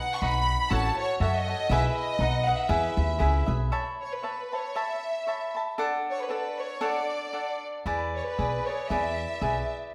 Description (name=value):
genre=mexican folk, mariachi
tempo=116 BPM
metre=2/4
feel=swing 55% on 8ths, rubato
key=E major, A major from 3.7 s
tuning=A4 = 441 Hz
part: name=rich studio violin section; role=melody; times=0.0-9.7 s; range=B4 to C#6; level=-33 LUFS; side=equal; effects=none
part: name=cavaquinho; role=accompaniment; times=0.0-9.9 s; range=D4 to B5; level=-32 LUFS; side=equal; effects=none
part: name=upright bass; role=bass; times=0.2-3.7, 7.9-9.6 s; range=A1 to F#2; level=-31 LUFS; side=equal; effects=none
room=wet recital hall reverb, RT60 1.3 s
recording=none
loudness=-28 LUFS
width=mono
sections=0.0-3.7 A section; 3.7-9.9 B section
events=none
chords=0.0 B; 0.7 F#m/A; 1.7 E/B; 2.2 B; 2.7 E; 3.7 Aadd9; 5.8 D; 7.9 E7